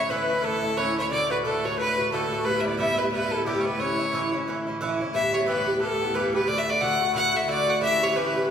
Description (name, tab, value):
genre	celtic folk, Celtic hornpipe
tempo	179 BPM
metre	4/4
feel	swing 60% on 8ths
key	D major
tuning	A4 = 440 Hz
part	bright fiddle	melody	0.0-8.5 s	G4 to F#5	-25 LUFS	equal	none
part	bright reedy wooden flute	second line	0.0-8.5 s	G4 to F#5	-30 LUFS	left 5 dB	none
part	Irish bouzouki	accompaniment	0.0-8.5 s	G2 to G4	-27 LUFS	right 2 dB	none
part	clear symphonic string section	drone	0.0-8.5 s	D2 to A2	-35 LUFS	left 1 dB	none
room	wet recital hall reverb, RT60 1.8 s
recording	recorded in a church or concert hall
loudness	-22 LUFS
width	side -8 dB against mid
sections	0.0-8.5 A section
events	none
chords	0.0 A; 1.1 D; 2.5 Em; 3.8 A; 5.1 Em; 6.5 D; 7.8 A7